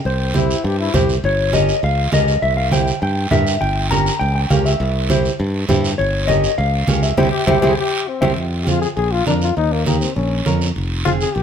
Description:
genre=latin, cumbia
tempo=202 BPM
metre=4/4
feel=straight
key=unclear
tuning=A4 = 439 Hz
part: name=mellow electric guitar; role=melody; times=0.0-8.3 s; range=C5 to Bb5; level=-20 LUFS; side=left 3 dB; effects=spring reverb, slapback echo
part: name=modern bright fingered electric bass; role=bass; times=0.1-11.4 s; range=F1 to G2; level=-20 LUFS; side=equal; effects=none
part: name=congas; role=percussion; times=0.1-11.4 s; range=none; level=-22 LUFS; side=right 4 dB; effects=none
part: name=guiro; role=percussion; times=0.1-11.4 s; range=none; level=-28 LUFS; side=right 5 dB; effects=none
part: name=nylon-string guitar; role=accompaniment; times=0.3-11.3 s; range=C4 to C5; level=-22 LUFS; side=right 2 dB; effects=none
part: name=warm trombone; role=second line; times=0.4-1.2, 7.3-11.4 s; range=Bb3 to Ab4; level=-21 LUFS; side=left 7 dB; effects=none
room=light reverb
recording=close, detailed microphones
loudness=-15 LUFS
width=side -8 dB against mid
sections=0.0-8.4 A section; 8.4-11.4 B section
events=band accent 7.2-8.4; drum fill 7.6-8.4; trombone solo 8.4-11.4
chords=0.0 C; 1.2 Gdim; 2.4 C; 3.6 Gdim; 4.8 C; 6.0 Gdim; 7.2 C; 8.4 Fm; 9.0 Bb; 9.6 Eb; 10.2 Bbm; 10.8 Fm

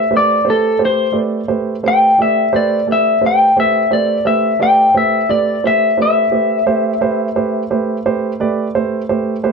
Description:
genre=blues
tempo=58 BPM (dotted quarters)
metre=12/8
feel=straight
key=A minor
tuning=A4 = 441 Hz
part: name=electric guitar through a small old amp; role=melody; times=0.0-8.0 s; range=A4 to G5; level=-13 LUFS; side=left 2 dB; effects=none
part: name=warm grand piano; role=accompaniment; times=0.0-9.5 s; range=A3 to D5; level=-17 LUFS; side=right 4 dB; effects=none
room=light reverb, studio reverb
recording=dark, warm production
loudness=-12 LUFS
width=side -5 dB against mid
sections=0.0-9.5 A section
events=none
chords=0.0 Am7

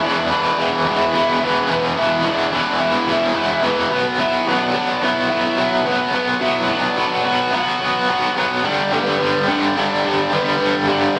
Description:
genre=rock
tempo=108 BPM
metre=4/4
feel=straight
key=unclear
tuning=A4 = 441 Hz
part: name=octave-fuzz lead guitar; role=melody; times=0.0-11.2 s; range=B3 to F#4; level=-24 LUFS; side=equal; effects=distortion, analog delay
part: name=biting overdriven guitar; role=riff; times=0.0-11.2 s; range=E2 to B3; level=-19 LUFS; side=equal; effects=tremolo
room=moderate studio reverb, RT60 0.6 s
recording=rough rehearsal-room recording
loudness=-18 LUFS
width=mono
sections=0.0-11.2 A section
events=none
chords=0.0 E5; 3.9 Bm; 8.7 G

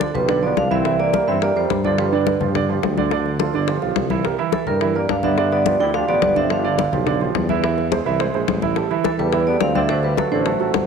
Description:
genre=Afro-Cuban jazz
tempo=212 BPM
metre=4/4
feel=straight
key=G mixolydian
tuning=A4 = 440 Hz
part: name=vibraphone with medium hard mallets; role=melody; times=0.0-2.4, 4.5-6.9, 9.1-10.8 s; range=A4 to G5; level=-22 LUFS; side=right 2 dB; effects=none
part: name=bright trombone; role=second line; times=0.0-2.4, 4.5-6.9, 9.0-10.8 s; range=E3 to E4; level=-27 LUFS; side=left 10 dB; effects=none
part: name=warm concert grand piano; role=accompaniment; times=0.0-10.8 s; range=D3 to E5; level=-21 LUFS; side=right 9 dB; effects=none
part: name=bongos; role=percussion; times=0.0-10.9 s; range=none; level=-27 LUFS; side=left 14 dB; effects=none
part: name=congas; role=percussion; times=0.0-10.9 s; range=none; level=-27 LUFS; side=left 12 dB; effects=none
part: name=warm tuba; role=bass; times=0.1-10.9 s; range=G1 to G2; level=-24 LUFS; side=left 1 dB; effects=none
room=moderate plate reverb, RT60 2.9 s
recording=1960s-style stereo with parts hard left and right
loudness=-17 LUFS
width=side -6 dB against mid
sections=0.0-10.9 A section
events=none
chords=0.0 G7; 0.8 C9; 2.0 G7; 3.1 Dm; 3.7 G7; 4.2 C9 (rootless); 5.4 G7; 7.6 Eaug; 8.8 A5; 9.9 D7

